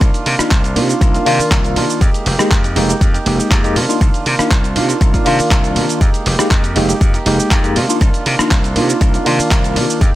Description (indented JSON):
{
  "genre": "filtered disco house",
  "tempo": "120 BPM",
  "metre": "4/4",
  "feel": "straight",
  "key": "unclear",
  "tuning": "A4 = 440 Hz",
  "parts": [
    { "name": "direct-recorded clean electric guitar", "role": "riff", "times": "0.0-10.2 s", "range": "Eb3 to G4", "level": "-22 LUFS", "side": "right 3 dB", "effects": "sidechain pumping" },
    { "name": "slap bass", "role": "bass", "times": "0.0-10.1 s", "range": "F1 to C3", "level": "-19 LUFS", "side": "equal", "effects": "tube saturation, sidechain pumping" },
    { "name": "dusty soul sampler-style drum kit", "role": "drums", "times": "0.0-10.1 s", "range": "handclaps, hi-hat, ride cymbal, rim click, shaker", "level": "-20 LUFS", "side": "right 1 dB", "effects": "none" },
    { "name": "electronic kick drum", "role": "drums", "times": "0.0-10.1 s", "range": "none", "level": "-13 LUFS", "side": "equal", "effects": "none" },
    { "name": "tine electric piano", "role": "accompaniment", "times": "0.4-10.0 s", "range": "Eb3 to G4", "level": "-18 LUFS", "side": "equal", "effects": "phaser, sidechain pumping" }
  ],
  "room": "light reverb, digital ambience",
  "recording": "none",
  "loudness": "-12 LUFS",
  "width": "side -15 dB against mid",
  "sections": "0.0-10.2 A section",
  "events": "none",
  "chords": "0.0 Cm11; 2.0 Fm11; 3.8 Cm11; 6.0 Fm11; 7.8 Cm11"
}